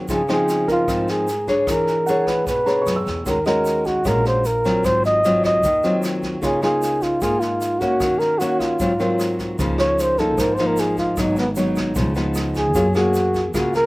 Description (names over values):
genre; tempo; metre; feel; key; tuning
bossa nova; 152 BPM; 4/4; straight; Db major; A4 = 439 Hz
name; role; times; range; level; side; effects
nylon-string guitar; accompaniment; 0.0-13.9 s; Ab2 to Db5; -22 LUFS; left 1 dB; none
warm grand piano; accompaniment; 0.0-12.1 s; Ab4 to E6; -29 LUFS; right 2 dB; none
upright bass; bass; 0.0-13.9 s; Ab1 to F#2; -26 LUFS; equal; none
breathy flugelhorn; melody; 0.1-13.9 s; Cb4 to Eb5; -19 LUFS; equal; none
vintage brush drum kit; drums; 0.1-13.8 s; kick drum, rim click, snare drum; -30 LUFS; right 1 dB; none
egg shaker; percussion; 0.1-13.9 s; none; -40 LUFS; right 4 dB; none
room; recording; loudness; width
little or no reverb; none; -17 LUFS; side -21 dB against mid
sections
0.0-9.6 A section; 9.6-13.9 B section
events
flugelhorn solo 9.6-13.9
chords
0.1 Dbmaj9; 1.7 E13; 3.3 Ebm11; 4.8 Ab6; 6.4 Db69; 8.0 Ebm7; 8.8 Ab13; 9.6 Db69; 11.2 Abm7; 12.0 Db9; 12.7 Gbmaj9